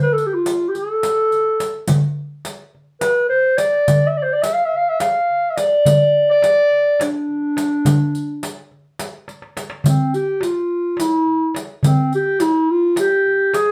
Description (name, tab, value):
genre	Turkish makam ensemble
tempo	211 BPM (eighths)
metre	7/8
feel	straight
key	D makam huseyni, G makam hicaz from 9.8 s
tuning	A4 = 439 Hz
part	dark clarinet	melody	0.0-13.7 s	C4 to F5	-18 LUFS	equal	none
part	riq	percussion	0.2-13.7 s	none	-30 LUFS	equal	none
part	darbuka	percussion	0.5-13.7 s	none	-21 LUFS	equal	none
room	wet studio reverb, RT60 0.6 s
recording	heard from further back in the room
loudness	-17 LUFS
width	mono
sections	0.0-9.8 A section; 9.8-13.7 B section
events	drum fill 9.3-9.8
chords	none